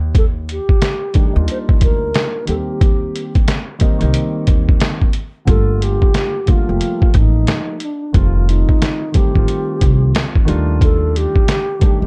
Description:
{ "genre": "hip hop, jazz-hop", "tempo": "90 BPM", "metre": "4/4", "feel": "swing 63% on 16ths", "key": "G minor", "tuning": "A4 = 440 Hz", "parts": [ { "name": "upright bass", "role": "bass", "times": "0.0-12.1 s", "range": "F1 to Eb2", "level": "-19 LUFS", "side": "equal", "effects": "none" }, { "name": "trip hop sampler-style drum kit", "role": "drums", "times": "0.1-12.0 s", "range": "hi-hat, kick drum, snare drum", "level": "-16 LUFS", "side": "equal", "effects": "none" }, { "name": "mellow wooden-headed alto flute", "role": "melody", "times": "0.2-12.1 s", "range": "D4 to C5", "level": "-24 LUFS", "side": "equal", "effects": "none" }, { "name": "dark concert grand piano", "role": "accompaniment", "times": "1.1-12.1 s", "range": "D3 to G4", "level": "-24 LUFS", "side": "equal", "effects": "none" } ], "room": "studio ambience", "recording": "dark, warm production", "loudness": "-15 LUFS", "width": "mono", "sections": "0.0-5.5 A section; 5.5-12.1 A section", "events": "none", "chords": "0.0 Ebmaj9; 2.5 Cm7/Eb; 5.5 Gm9; 8.1 F9; 10.5 Ebmaj9#11" }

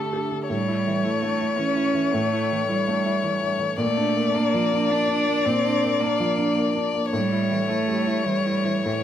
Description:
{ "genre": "neoclassical piano and strings", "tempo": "108 BPM", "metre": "3/4", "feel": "rubato", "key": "unclear", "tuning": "A4 = 442 Hz", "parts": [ { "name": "warm violin", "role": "melody", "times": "0.0-9.0 s", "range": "A4 to D5", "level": "-24 LUFS", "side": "left 6 dB", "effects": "tape echo" }, { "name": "rich cello", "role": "second line", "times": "0.0-9.0 s", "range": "E3 to D4", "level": "-25 LUFS", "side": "right 4 dB", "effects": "none" }, { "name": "felt-muted upright piano", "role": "accompaniment", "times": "0.0-9.0 s", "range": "G2 to G4", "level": "-26 LUFS", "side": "right 1 dB", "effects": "none" } ], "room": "light reverb", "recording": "none", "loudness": "-20 LUFS", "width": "side -10 dB against mid", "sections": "0.0-9.0 A section", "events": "none", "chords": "0.5 A7; 3.8 Bb; 7.1 A7" }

